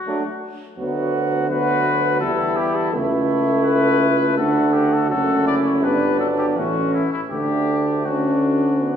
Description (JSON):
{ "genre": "classical, brass quintet", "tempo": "83 BPM", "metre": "3/4", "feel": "straight", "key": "D major", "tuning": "A4 = 441 Hz", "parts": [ { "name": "clear trumpet", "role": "melody", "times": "0.0-9.0 s", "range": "E4 to D5", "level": "-24 LUFS", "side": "left 6 dB", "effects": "none" }, { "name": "clear flugelhorn", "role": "second line", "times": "0.1-9.0 s", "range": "C#4 to F#4", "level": "-24 LUFS", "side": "right 4 dB", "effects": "none" }, { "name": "brilliant trombone", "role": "accompaniment", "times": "0.1-9.0 s", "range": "D3 to A3", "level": "-26 LUFS", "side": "right 2 dB", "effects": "none" }, { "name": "clear French horn", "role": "accompaniment", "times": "0.1-9.0 s", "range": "A3 to D4", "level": "-24 LUFS", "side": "left 2 dB", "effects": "none" }, { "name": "clear tuba", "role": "bass", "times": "0.8-9.0 s", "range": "F#1 to E2", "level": "-22 LUFS", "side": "right 1 dB", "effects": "none" } ], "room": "wet recital hall reverb, RT60 1.5 s", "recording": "heard from further back in the room", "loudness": "-17 LUFS", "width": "side -8 dB against mid", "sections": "0.0-9.0 A section", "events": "none", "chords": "0.0 D; 0.8 Bm/D; 2.2 Em; 2.9 A/C#; 4.4 D; 5.1 F#m; 5.8 G; 6.6 A; 7.3 D", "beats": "0.07 | 0.78 1.50 2.21 | 2.93 3.65 4.38 | 5.10 5.83 6.57 | 7.31 8.06 8.81" }